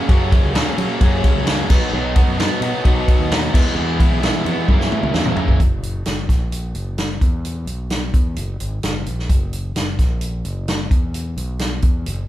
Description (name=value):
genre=classic rock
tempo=130 BPM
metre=4/4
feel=straight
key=F# mixolydian, F# major from 5.6 s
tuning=A4 = 440 Hz
part: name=overdriven semi-hollow guitar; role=riff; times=0.0-5.6 s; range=F#2 to E4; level=-20 LUFS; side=right 1 dB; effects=none
part: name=growling fingered electric bass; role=bass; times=0.1-12.3 s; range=F#1 to F#3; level=-24 LUFS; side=equal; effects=overdrive
part: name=vintage drum kit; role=drums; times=0.1-12.2 s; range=crash cymbal, hi-hat, kick drum, ride cymbal, snare drum, toms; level=-17 LUFS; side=equal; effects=none
room=light reverb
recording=band playing live in one room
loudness=-16 LUFS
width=side -14 dB against mid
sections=0.0-5.6 A section; 5.6-12.3 B section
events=drum fill 4.7-5.6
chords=0.0 F#; 1.7 B; 3.5 E; 4.7 F#7; 5.6 N.C.